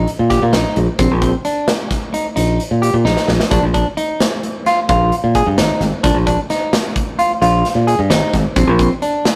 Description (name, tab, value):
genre	progressive instrumental, band music in an uneven meter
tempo	261 BPM (eighths)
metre	11/8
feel	straight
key	Bb mixolydian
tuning	A4 = 440 Hz
part	clean electric guitar	arpeggios	0.0-9.3 s	C4 to Ab4	-20 LUFS	equal	none
part	fingered electric bass	bass	0.0-8.9 s	Ab1 to Bb2	-18 LUFS	equal	none
part	big rock drum kit	drums	0.1-9.4 s	hi-hat, kick drum, snare drum	-21 LUFS	equal	none
room	moderate studio reverb, RT60 0.6 s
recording	rough rehearsal-room recording, tube saturation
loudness	-16 LUFS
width	mono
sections	0.0-9.4 A section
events	drum fill 3.1-3.5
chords	0.0 N.C.; 3.5 Bb7sus4; 8.6 N.C.